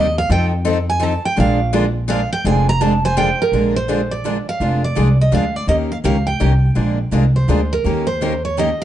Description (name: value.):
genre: acoustic string swing (jazz manouche).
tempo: 167 BPM.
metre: 3/4.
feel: swing 62% on 8ths.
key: Bb mixolydian.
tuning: A4 = 440 Hz.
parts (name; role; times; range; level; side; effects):
picked steel-string acoustic guitar; melody; 0.0-8.8 s; Bb4 to Bb5; -20 LUFS; right 3 dB; none.
picked steel-string acoustic guitar; accompaniment; 0.0-8.7 s; D3 to Bb4; -23 LUFS; left 6 dB; none.
picked steel-string acoustic guitar; accompaniment; 0.0-8.7 s; Eb3 to Bb4; -23 LUFS; right 5 dB; none.
upright bass; bass; 0.0-8.7 s; F1 to F2; -18 LUFS; equal; none.
room: moderate studio reverb, RT60 0.8 s.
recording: dark, warm production, nothing above 10.6 kHz.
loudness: -14 LUFS.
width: side -11 dB against mid.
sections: 0.0-3.5 A section; 3.5-8.8 B section.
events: steel-string acoustic guitar solo 0.0-3.5.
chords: 0.3 F7; 1.4 Bb7; 5.7 Eb7; 6.8 Bb7; 7.8 Eb7.